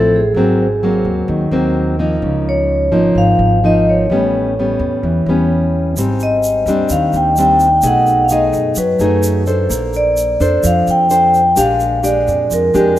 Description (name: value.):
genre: bossa nova.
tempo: 128 BPM.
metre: 4/4.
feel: straight.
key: unclear.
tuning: A4 = 440 Hz.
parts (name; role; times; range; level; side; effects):
vibraphone with medium hard mallets; melody; 0.0-13.0 s; Ab4 to G5; -14 LUFS; left 1 dB; none.
nylon-string guitar; accompaniment; 0.0-13.0 s; Ab2 to C5; -16 LUFS; equal; none.
upright bass; bass; 0.0-13.0 s; Ab1 to F#2; -20 LUFS; equal; none.
tube shaker; percussion; 6.0-13.0 s; none; -27 LUFS; right 2 dB; none.
room: moderate lush hall reverb, RT60 2.4 s.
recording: rough home demo mix.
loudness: -12 LUFS.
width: side -13 dB against mid.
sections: 0.0-13.0 A section.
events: none.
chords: 0.4 Ab9; 2.2 Db69; 4.1 A9; 6.0 Abmaj7#11; 7.8 B6; 9.7 Bbmaj9; 11.6 Bb6.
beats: | 0.35 0.82 1.29 1.76 | 2.22 2.69 3.16 3.62 | 4.09 4.56 5.03 5.50 | 5.96 6.43 6.90 7.36 | 7.83 8.30 8.77 9.23 | 9.70 10.17 10.64 11.10 | 11.57 12.04 12.51 12.97.